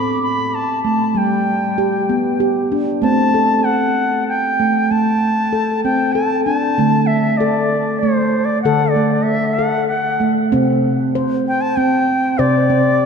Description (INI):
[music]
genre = world meditative, meditative tuned percussion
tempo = 96 BPM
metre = 3/4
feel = swing 55% on 16ths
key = unclear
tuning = A4 = 440 Hz
[part]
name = bright reedy bansuri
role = melody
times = 0.0-13.1 s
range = C5 to B5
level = -18 LUFS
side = equal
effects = analog delay
[part]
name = handpan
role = arpeggios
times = 0.0-13.1 s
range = A2 to C5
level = -16 LUFS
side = equal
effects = none
[sound]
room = wet cathedral reverb, RT60 4.8 s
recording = dreamy mix soaked in reverb, nothing above 10.6 kHz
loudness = -14 LUFS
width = side -6 dB against mid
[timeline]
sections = 0.0-6.8 A section; 6.8-13.1 B section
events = none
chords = 0.0 N.C.; 1.2 G; 3.0 Am; 6.8 D5; 10.5 C5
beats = 0.53 | 1.15 1.78 2.40 | 3.03 3.65 4.28 | 4.90 5.52 6.15 | 6.77 7.40 8.02 | 8.64 9.27 9.89 | 10.52 11.14 11.77 | 12.39 13.02